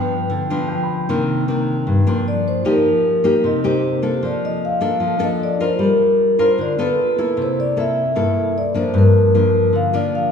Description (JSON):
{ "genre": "bossa nova", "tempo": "152 BPM", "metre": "4/4", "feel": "straight", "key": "G minor", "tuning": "A4 = 440 Hz", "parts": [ { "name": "vibraphone with soft mallets", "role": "melody", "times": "0.0-10.3 s", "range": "Bb4 to G5", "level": "-19 LUFS", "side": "equal", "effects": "none" }, { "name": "nylon-string guitar", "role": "accompaniment", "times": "0.0-10.3 s", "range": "G2 to Bb4", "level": "-18 LUFS", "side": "left 2 dB", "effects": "none" }, { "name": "warm grand piano", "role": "accompaniment", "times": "0.7-1.4 s", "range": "G5 to B5", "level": "-31 LUFS", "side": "right 4 dB", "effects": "none" } ], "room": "wet concert hall reverb, RT60 1.8 s", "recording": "recorded in a church or concert hall, small room reverb", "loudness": "-15 LUFS", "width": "side -7 dB against mid", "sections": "0.0-2.7 A section; 2.7-10.3 A section", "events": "none", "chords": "0.0 G7; 1.1 Cm9; 2.3 Bbadd9/F; 2.7 F9sus4; 4.2 Bbmaj7/F; 5.8 Gm7; 7.0 Fmaj7#11; 7.4 C13; 9.0 Gm7" }